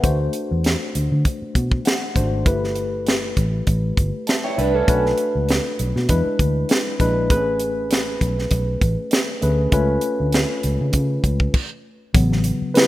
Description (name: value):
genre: lush 1970s-style soul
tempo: 99 BPM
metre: 4/4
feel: swing 54% on 16ths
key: unclear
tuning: A4 = 440 Hz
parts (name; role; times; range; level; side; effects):
- tine electric piano; accompaniment; 0.0-12.9 s; C#3 to A5; -23 LUFS; left 1 dB; medium stereo tremolo
- vintage muted fingered electric bass; bass; 0.0-12.6 s; G1 to D3; -21 LUFS; equal; none
- tight funk drum kit; drums; 0.0-12.9 s; crash cymbal, hi-hat, kick drum, snare drum; -19 LUFS; equal; none
- electric guitar through a small old amp; riff; 4.4-5.0 s; C#4 to C#5; -22 LUFS; right 4 dB; phaser
room: light reverb, small room reverb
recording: rough home demo mix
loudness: -18 LUFS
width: side -15 dB against mid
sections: 0.0-12.1 A section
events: tine electric piano fill 1.5-2.5; stop 11.5-12.1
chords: 0.0 D7; 2.5 G69; 4.9 Bm7; 6.1 E7; 7.3 Amaj9; 9.7 C#aug7; 12.1 A69